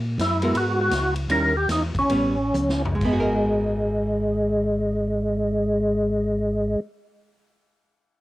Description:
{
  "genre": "soul jazz organ trio",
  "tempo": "121-172 BPM",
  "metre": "4/4",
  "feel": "swing 65% on 8ths",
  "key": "G# minor",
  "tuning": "A4 = 440 Hz",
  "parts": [
    { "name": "mellow tonewheel organ", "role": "bass", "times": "0.0-6.8 s", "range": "G#1 to A#2", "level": "-27 LUFS", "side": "equal", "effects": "slow rotary speaker" },
    { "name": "percussive tonewheel organ", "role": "melody", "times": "0.2-6.8 s", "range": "G#3 to A#4", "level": "-22 LUFS", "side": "equal", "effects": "slow rotary speaker, overdrive, chorus vibrato, cassette tape" },
    { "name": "swinging big-band drum kit", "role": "drums", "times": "0.2-3.2 s", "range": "crash cymbal, hi-hat, kick drum, ride cymbal, snare drum, toms", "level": "-30 LUFS", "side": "equal", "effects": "cassette tape" },
    { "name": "archtop guitar, miked and amplified", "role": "accompaniment", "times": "0.4-7.0 s", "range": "D#3 to A#4", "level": "-26 LUFS", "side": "right 1 dB", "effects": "cassette tape" }
  ],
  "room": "moderate booth ambience, RT60 0.2 s",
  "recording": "home recording on cassette",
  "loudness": "-20 LUFS",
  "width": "side -16 dB against mid",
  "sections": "0.0-3.0 A section; 3.0-7.0 B section",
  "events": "slowing down 0.0-3.0; drum fill 2.5-3.0",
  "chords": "0.0 F#9; 0.5 G#m9; 1.3 D#7b9; 2.1 A9; 3.0 G#m9"
}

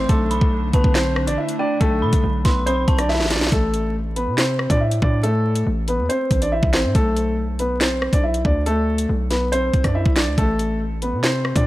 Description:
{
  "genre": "hip hop, drill",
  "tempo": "140 BPM",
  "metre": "4/4",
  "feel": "half-time",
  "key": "unclear",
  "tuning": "A4 = 440 Hz",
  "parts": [
    { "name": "dark concert grand piano", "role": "melody", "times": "0.0-11.6 s", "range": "A3 to E5", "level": "-21 LUFS", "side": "equal", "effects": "low-pass filter" },
    { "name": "dark detuned synth bell", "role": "second line", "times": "0.0-3.5 s", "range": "G5 to C6", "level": "-29 LUFS", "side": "right 2 dB", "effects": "chorus, tape echo" },
    { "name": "hollow soft pad", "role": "sustained chords", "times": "0.0-3.5 s", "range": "D3 to D4", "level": "-30 LUFS", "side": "right 1 dB", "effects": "ensemble chorus" },
    { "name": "hard-hitting 808-style bass", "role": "bass", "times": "0.0-11.7 s", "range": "A1 to C3", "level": "-22 LUFS", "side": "equal", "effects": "none" },
    { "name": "drill drum kit", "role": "drums", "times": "0.1-11.7 s", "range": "handclaps, hi-hat, kick drum, rim click, snare drum", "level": "-20 LUFS", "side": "equal", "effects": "none" }
  ],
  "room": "light reverb",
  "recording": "vinyl crackle",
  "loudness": "-17 LUFS",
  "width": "side -16 dB against mid",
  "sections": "0.0-3.5 A section; 3.5-11.7 B section",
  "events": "drum fill 3.1-3.5",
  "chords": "0.1 Am; 7.0 Bm7; 10.4 Am"
}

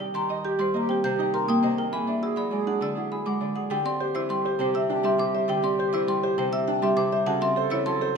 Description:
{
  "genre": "classical, minimalist pattern music",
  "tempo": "101 BPM",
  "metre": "3/4",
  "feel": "straight",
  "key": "unclear",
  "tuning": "A4 = 440 Hz",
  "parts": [
    { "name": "marimba with medium hard mallets", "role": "melody", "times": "0.0-8.2 s", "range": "G4 to Bb5", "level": "-27 LUFS", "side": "left 5 dB", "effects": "none" },
    { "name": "Celtic harp", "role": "accompaniment", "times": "0.0-8.2 s", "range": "C3 to Eb4", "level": "-29 LUFS", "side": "right 1 dB", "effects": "none" },
    { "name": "bright grand piano", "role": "arpeggios", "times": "0.0-8.2 s", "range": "C4 to Eb5", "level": "-32 LUFS", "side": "right 8 dB", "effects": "none" },
    { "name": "xylophone with wooden mallets", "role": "arpeggios", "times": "0.0-8.1 s", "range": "F#5 to G6", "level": "-32 LUFS", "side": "right 2 dB", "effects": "none" },
    { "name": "warm clarinet", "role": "second line", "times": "0.1-8.1 s", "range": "G4 to A4", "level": "-31 LUFS", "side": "right 5 dB", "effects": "none" }
  ],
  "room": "wet recital hall reverb, RT60 1.7 s",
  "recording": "none",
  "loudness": "-23 LUFS",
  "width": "side -6 dB against mid",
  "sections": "0.0-3.7 A section; 3.7-8.2 B section",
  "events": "none",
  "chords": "0.1 Eb; 1.9 E7; 3.7 Cadd9; 7.3 F#m7"
}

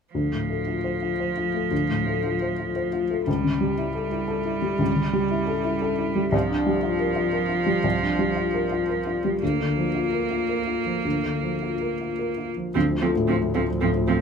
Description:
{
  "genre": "neoclassical piano and strings",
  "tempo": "103-122 BPM",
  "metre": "3/4",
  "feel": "rubato",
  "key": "D minor",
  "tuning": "A4 = 441 Hz",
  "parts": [
    { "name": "clear cello", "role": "second line", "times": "0.1-14.2 s", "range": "F3 to Bb3", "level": "-28 LUFS", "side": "right 7 dB", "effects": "none" },
    { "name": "dark upright piano", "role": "accompaniment", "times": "0.1-14.2 s", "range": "C2 to C5", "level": "-23 LUFS", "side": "left 2 dB", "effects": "none" },
    { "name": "rich viola", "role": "accompaniment", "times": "12.7-14.2 s", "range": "C4", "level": "-27 LUFS", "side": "right 10 dB", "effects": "none" },
    { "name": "clear double bass", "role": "bass", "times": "12.7-14.2 s", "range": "D2", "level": "-29 LUFS", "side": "right 1 dB", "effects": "none" }
  ],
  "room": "moderate studio reverb, RT60 0.6 s",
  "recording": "minimal, uncompressed stereo recording",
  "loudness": "-22 LUFS",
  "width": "side -6 dB against mid",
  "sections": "0.1-12.8 A section; 12.8-14.2 A section",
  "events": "none",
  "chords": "0.1 Dm7; 3.3 A7/C#; 6.3 C7sus4; 9.4 Bb/D; 12.8 Dm7"
}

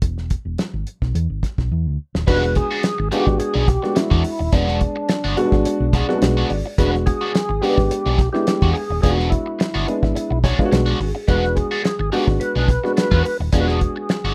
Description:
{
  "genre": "funk",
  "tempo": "107 BPM",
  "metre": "4/4",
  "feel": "straight",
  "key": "E mixolydian",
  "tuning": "A4 = 437 Hz",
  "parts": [
    { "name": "hollow-body short-scale fingered electric bass", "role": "bass", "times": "0.0-14.3 s", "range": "D#1 to E2", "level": "-23 LUFS", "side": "equal", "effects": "none" },
    { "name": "cloth-damped thuddy drum kit", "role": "drums", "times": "0.0-14.2 s", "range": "crash cymbal, hi-hat, kick drum, snare drum", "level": "-23 LUFS", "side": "equal", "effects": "none" },
    { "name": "percussive tonewheel organ", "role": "melody", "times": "2.3-14.3 s", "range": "D4 to B4", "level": "-26 LUFS", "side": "equal", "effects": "overdrive, chorus vibrato, slow rotary speaker" },
    { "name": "crunchy overdriven guitar", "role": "accompaniment", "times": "2.3-14.3 s", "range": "G#3 to G#4", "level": "-28 LUFS", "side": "equal", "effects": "wah" },
    { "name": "dark upright piano", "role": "stabs", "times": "2.3-14.1 s", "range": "F#3 to D5", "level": "-25 LUFS", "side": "equal", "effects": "none" }
  ],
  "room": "light reverb",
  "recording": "rough home demo mix",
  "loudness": "-19 LUFS",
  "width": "mono",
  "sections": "0.0-2.3 A section; 2.3-14.3 B section",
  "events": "drum fill 1.7-2.3; upright piano fill 5.7-6.8, 10.2-11.3",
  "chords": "0.0 N.C.; 2.3 E9"
}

